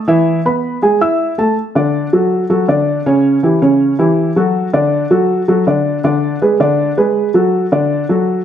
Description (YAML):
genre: latin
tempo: 161 BPM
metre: 4/4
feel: straight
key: unclear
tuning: A4 = 440 Hz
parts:
  - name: dark upright piano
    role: solo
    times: 0.1-8.4 s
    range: C#3 to E6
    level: -11 LUFS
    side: equal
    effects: none
room: moderate large studio reverb, RT60 1.1 s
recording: dark, warm production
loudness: -11 LUFS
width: side -9 dB against mid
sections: 0.0-1.6 A section; 1.6-8.4 B section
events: none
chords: 0.1 E; 1.6 D; 3.1 A7 (rootless); 4.5 D; 6.0 Bm6/D; 7.5 D